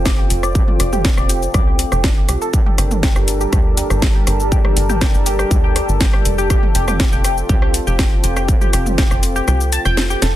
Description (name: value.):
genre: melodic techno.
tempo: 121 BPM.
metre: 4/4.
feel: straight.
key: unclear.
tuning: A4 = 442 Hz.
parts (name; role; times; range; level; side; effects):
dark analog pad; sustained chords; 0.0-10.4 s; G3 to Bb4; -25 LUFS; equal; chorus, sidechain pumping.
tight sequencer bass; bass; 0.0-10.4 s; F1 to D2; -19 LUFS; equal; sidechain pumping.
warbly tape-like pad; texture; 0.0-10.4 s; F4 to A5; -26 LUFS; right 1 dB; chorus, built-in reverb, sidechain pumping.
tight sequenced synth; arpeggios; 0.1-10.3 s; D4 to A5; -24 LUFS; left 1 dB; chorus, phaser, sidechain pumping, digital delay.
electronic kick drum; drums; 0.1-9.1 s; none; -15 LUFS; equal; distortion.
techno drum kit; drums; 0.1-10.3 s; hi-hat, rim click, shaker, snare drum, toms; -21 LUFS; equal; soft clipping on snare.
room: little or no reverb.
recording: dense, heavily limited modern master.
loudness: -13 LUFS.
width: side -13 dB against mid.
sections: 0.0-10.4 A section.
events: kick drops out 9.5-10.4.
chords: 0.0 F; 2.5 Gm; 6.5 F.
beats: 0.06 | 0.55 1.05 1.54 2.04 | 2.54 3.03 3.53 4.02 | 4.52 5.01 5.51 6.01 | 6.50 7.00 7.49 7.99 | 8.48 8.98 9.48 9.97.